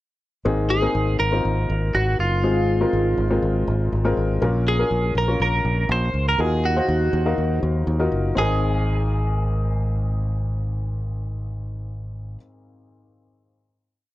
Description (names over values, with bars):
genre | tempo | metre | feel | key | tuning
piano-driven pop | 121 BPM | 4/4 | straight | Ab mixolydian | A4 = 444 Hz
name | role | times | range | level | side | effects
clear upright piano | accompaniment | 0.5-14.1 s | Ab1 to F5 | -25 LUFS | left 3 dB | none
fingered electric bass | bass | 0.5-12.4 s | Gb1 to Eb2 | -22 LUFS | equal | none
twelve-string electric guitar | melody | 0.7-12.4 s | F4 to C5 | -24 LUFS | right 1 dB | phaser, slapback echo
room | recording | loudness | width
light reverb | dry, close 1970s-style studio recording | -19 LUFS | side -16 dB against mid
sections
0.5-8.4 verse; 8.4-12.3 final chord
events
none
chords
0.5 Abadd9; 2.4 Fm/Ab; 4.4 Bbm; 6.4 Ebmadd9; 8.4 Abadd9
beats
| 0.45 0.95 1.44 1.94 | 2.43 2.93 3.42 3.92 | 4.41 4.91 5.40 5.90 | 6.39 6.88 7.38 7.87 | 8.37 8.86 9.36 9.85 | 10.35 10.84 11.34 11.83